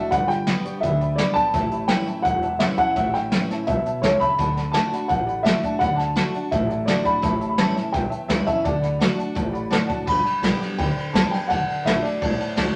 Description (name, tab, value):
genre	rockabilly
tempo	169 BPM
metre	4/4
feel	straight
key	D major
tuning	A4 = 440 Hz
part	dark upright piano	melody	0.0-12.7 s	C#5 to B5	-25 LUFS	equal	none
part	honky-tonk upright piano	accompaniment	0.0-12.7 s	C#5 to D6	-34 LUFS	equal	none
part	picked steel-string acoustic guitar	accompaniment	0.0-12.8 s	E2 to G4	-30 LUFS	equal	none
part	upright bass	bass	0.1-12.7 s	E1 to D2	-30 LUFS	equal	none
part	jazz brush drum kit	drums	0.1-12.7 s	crash cymbal, hi-hat, kick drum, ride cymbal, snare drum	-27 LUFS	equal	none
room	wet studio reverb, RT60 0.8 s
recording	none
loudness	-22 LUFS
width	mono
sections	0.0-10.1 A section; 10.1-12.8 B section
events	none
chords	0.1 G; 1.5 A7; 4.4 D; 7.2 A7; 8.7 D; 10.1 G; 11.5 D